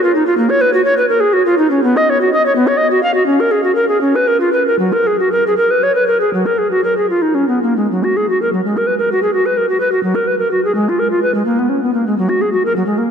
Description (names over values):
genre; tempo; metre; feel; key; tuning
classical, baroque-style fantasia for unaccompanied recorder; 72-86 BPM (dotted quarters); 12/8; rubato; F# major; A4 = 440 Hz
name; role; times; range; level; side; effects
mellow bass recorder; solo; 0.0-13.1 s; F#3 to E#5; -12 LUFS; equal; none
room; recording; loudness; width
wet cathedral reverb, RT60 4.2 s; dark, warm production; -12 LUFS; side -7 dB against mid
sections
0.0-7.9 A section; 7.9-13.1 B section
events
none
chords
none